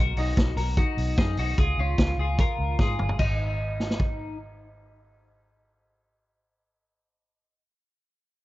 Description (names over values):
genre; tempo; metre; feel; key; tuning
jangly indie pop; 149 BPM; 4/4; straight; unclear; A4 = 440 Hz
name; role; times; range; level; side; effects
twelve-string electric guitar; arpeggios; 0.0-4.4 s; Db4 to A#4; -30 LUFS; left 2 dB; wide subtle chorus, tape echo
vintage muted fingered electric bass; bass; 0.0-7.7 s; G1 to Ab2; -28 LUFS; equal; none
vintage drum kit; drums; 0.2-4.1 s; crash cymbal, hi-hat, kick drum, snare drum, toms; -25 LUFS; equal; none
room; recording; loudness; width
little or no reverb; dark, warm production, nothing above 7.6 kHz; -23 LUFS; side -17 dB against mid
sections
0.0-3.2 A section; 3.2-6.4 B section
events
drum fill 2.8-3.2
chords
0.0 Bmaj7; 1.6 Db; 3.2 Ab5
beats
0.37 0.77 1.17 | 1.58 1.98 2.38 2.79 | 3.19 3.59 4.00 4.40 | 4.80 5.20 5.61 6.01